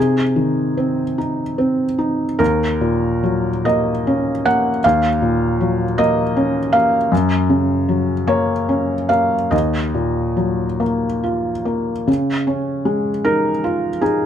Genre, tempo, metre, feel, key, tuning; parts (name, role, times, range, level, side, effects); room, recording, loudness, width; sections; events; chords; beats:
neoclassical minimalist piano; 46-53 BPM (dotted quarters); 6/8; rubato; Eb dorian; A4 = 438 Hz
felt-muted upright piano; solo; 0.0-14.3 s; Eb2 to Gb5; -16 LUFS; equal
light reverb; -16 LUFS; side -9 dB against mid
0.0-12.1 A section; 12.1-14.3 A section
0.0 Ab/C; 2.4 Ebm7; 7.1 Gb; 9.5 Ebmadd9; 12.1 Dbadd9
1.18 | 2.40 3.66 | 4.84 5.98 | 7.12 8.28 | 9.52 10.81 | 12.08 13.26